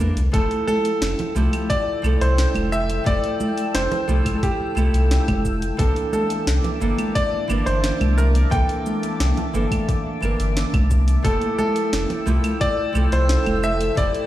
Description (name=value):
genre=sunset chillout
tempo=88 BPM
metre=4/4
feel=straight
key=F major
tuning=A4 = 441 Hz
part: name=nylon-string guitar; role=accompaniment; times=0.0-14.3 s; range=E3 to Bb4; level=-26 LUFS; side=equal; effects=auto-pan, ping-pong delay
part: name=warm sub bass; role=bass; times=0.0-14.1 s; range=F1 to E2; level=-20 LUFS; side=equal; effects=none
part: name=electronic kick drum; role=drums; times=0.0-14.1 s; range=none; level=-22 LUFS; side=equal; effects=none
part: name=smooth R&B drum kit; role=drums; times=0.0-14.3 s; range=cabasa, claves, hi-hat, snare drum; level=-30 LUFS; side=right 1 dB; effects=none
part: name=clear baby grand piano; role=melody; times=0.3-14.3 s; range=G4 to G5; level=-24 LUFS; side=equal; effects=ping-pong delay
part: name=shimmering ambient pad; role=sustained chords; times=0.7-14.3 s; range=Bb3 to E6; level=-29 LUFS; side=equal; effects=chorus, built-in reverb, phaser
part: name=congas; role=percussion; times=0.7-13.6 s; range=none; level=-29 LUFS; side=right 1 dB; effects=none
room=light reverb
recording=played on a big sound system in a bare room, stone room reverb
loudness=-18 LUFS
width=side -14 dB against mid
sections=0.0-14.3 A section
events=none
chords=0.3 Fmaj9; 5.8 C13; 11.2 Fmaj9